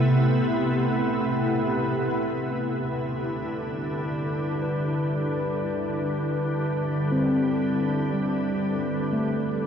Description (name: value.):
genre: ambient.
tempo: 60 BPM.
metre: 4/4.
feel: straight.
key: C major.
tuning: A4 = 440 Hz.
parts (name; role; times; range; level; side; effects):
soft additive organ-like pad; sustained chords; 0.0-9.7 s; C3 to B4; -24 LUFS; equal; ensemble chorus, built-in reverb, shimmer reverb.
mellow tine electric piano; arpeggios; 4.6-9.7 s; G3 to B4; -28 LUFS; left 1 dB; phaser, tape echo.
room: wet huge ambient reverb, RT60 8.3 s.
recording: dark, warm production.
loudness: -23 LUFS.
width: side -8 dB against mid.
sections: 0.0-2.6 A section; 2.6-9.7 B section.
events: none.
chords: 0.0 Amadd9/C; 2.6 Cmaj9.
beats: 0.62 1.62 | 2.62 3.62 4.62 5.62 | 6.62 7.62 8.62 9.62.